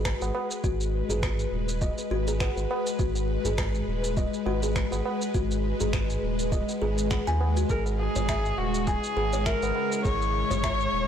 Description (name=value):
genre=organic downtempo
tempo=102 BPM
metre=4/4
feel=swing 56% on 16ths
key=G# minor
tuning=A4 = 439 Hz
part: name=bowed-like drone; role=sustained chords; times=0.0-11.1 s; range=C#3 to B4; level=-31 LUFS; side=left 2 dB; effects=built-in reverb, sidechain pumping
part: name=kalimba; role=arpeggios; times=0.0-10.8 s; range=F#4 to G#5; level=-33 LUFS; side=left 1 dB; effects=digital delay
part: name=warm sub bass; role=bass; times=0.0-11.1 s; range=D#1 to D#2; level=-29 LUFS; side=equal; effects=tube saturation
part: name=electronic finger snaps and shaker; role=drums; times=0.1-10.9 s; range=none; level=-36 LUFS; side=right 1 dB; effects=overdrive, soft clipping on snare
part: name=electronic kick drum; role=drums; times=0.1-10.8 s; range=none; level=-30 LUFS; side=equal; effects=overdrive
part: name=tabla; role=percussion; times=0.2-10.6 s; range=none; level=-37 LUFS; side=right 3 dB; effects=none
part: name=clear kamancheh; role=melody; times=7.7-11.1 s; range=F#4 to C#5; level=-28 LUFS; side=left 2 dB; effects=none
room=light reverb, small room ambience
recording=blown-out, overdriven recording, overdrive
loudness=-24 LUFS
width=side -9 dB against mid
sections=0.0-11.1 A section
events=none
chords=0.0 G#m7; 7.7 C#m